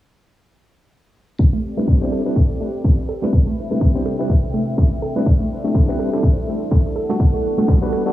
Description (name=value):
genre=deep house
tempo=124 BPM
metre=4/4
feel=swing 57% on 16ths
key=A dorian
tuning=A4 = 440 Hz
part: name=warm analog pad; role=sustained chords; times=1.4-8.1 s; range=G3 to F#5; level=-29 LUFS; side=left 1 dB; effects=chorus, sidechain pumping
part: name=electronic kick drum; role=drums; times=1.4-7.8 s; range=none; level=-16 LUFS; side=equal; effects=overdrive
part: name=jazz brush drum kit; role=drums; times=1.4-8.1 s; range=hi-hat, snare drum, tambourine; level=-45 LUFS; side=left 1 dB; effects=high-pass filter on hats, high-pass filter on snare, high-pass filter on perc, high-pass filter on room
part: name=deep dark ambient pad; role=texture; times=3.1-8.1 s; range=C3 to G5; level=-27 LUFS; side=right 1 dB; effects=chorus, built-in reverb, sidechain pumping
part: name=analog pluck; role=arpeggios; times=1.5-8.0 s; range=A2 to A4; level=-25 LUFS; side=right 2 dB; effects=chorus, sidechain pumping, tape echo
part: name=tine electric piano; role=stabs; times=1.8-8.1 s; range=G3 to C5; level=-23 LUFS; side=equal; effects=medium stereo tremolo, sidechain pumping, low-pass filter, tape echo
room=light reverb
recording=low-pass filter, small room ambience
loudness=-16 LUFS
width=side -14 dB against mid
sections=1.4-8.1 A section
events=none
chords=1.4 Am11; 7.0 Gmaj9